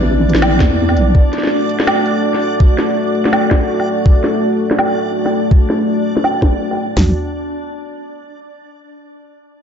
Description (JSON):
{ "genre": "half-time drum and bass", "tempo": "165 BPM", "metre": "4/4", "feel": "swing 58% on 16ths, half-time", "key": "B minor", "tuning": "A4 = 440 Hz", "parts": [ { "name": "dark analog pad", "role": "sustained chords", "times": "0.0-7.1 s", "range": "A3 to D5", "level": "-17 LUFS", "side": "equal", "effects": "chorus, sidechain pumping" }, { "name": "deep soft wobble bass", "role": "bass", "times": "0.0-1.1, 7.0-7.1 s", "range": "A1 to E2", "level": "-14 LUFS", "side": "equal", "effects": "chorus, tube saturation" }, { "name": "backwards swelling texture", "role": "texture", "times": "0.0-7.0 s", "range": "D4 to D5", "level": "-25 LUFS", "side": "left 1 dB", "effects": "built-in reverb" }, { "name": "organic electronic drum kit", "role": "drums", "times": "0.3-6.9 s", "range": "hi-hat, snare drum", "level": "-18 LUFS", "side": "equal", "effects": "low-pass filter on snare, low-pass filter on hats, low-pass filter on room" }, { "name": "trap drum kit", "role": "drums", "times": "0.6-7.1 s", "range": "hi-hat, kick drum, snare drum, toms", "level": "-11 LUFS", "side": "equal", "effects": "none" } ], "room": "wet lush hall reverb, RT60 1.9 s", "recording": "dreamy mix soaked in reverb, nothing above 7.8 kHz", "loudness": "-12 LUFS", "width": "side -7 dB against mid", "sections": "0.0-7.0 A section; 7.0-8.4 B section", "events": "filter sweep on drum 0.0-7.0", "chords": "0.0 Bm; 1.1 D; 7.0 Bm" }